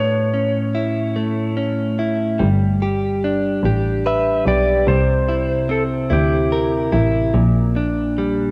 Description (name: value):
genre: six-eight pop ballad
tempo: 48 BPM (dotted quarters)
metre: 6/8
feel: straight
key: unclear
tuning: A4 = 440 Hz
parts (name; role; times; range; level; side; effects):
- clean lap steel guitar; melody; 0.0-7.0 s; G4 to E5; -23 LUFS; equal; cassette tape
- direct-recorded clean electric guitar; accompaniment; 0.0-8.5 s; A2 to B4; -22 LUFS; equal; lush chorus, cassette tape
- clear double bass; bass; 2.4-8.5 s; G1 to D2; -22 LUFS; equal; none
room: moderate lush hall reverb, RT60 2.4 s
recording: home recording on cassette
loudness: -19 LUFS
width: mono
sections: 0.0-2.4 A section; 2.4-8.5 B section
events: none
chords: 0.0 A; 2.4 Gadd9; 4.9 C7; 7.3 Gm/Bb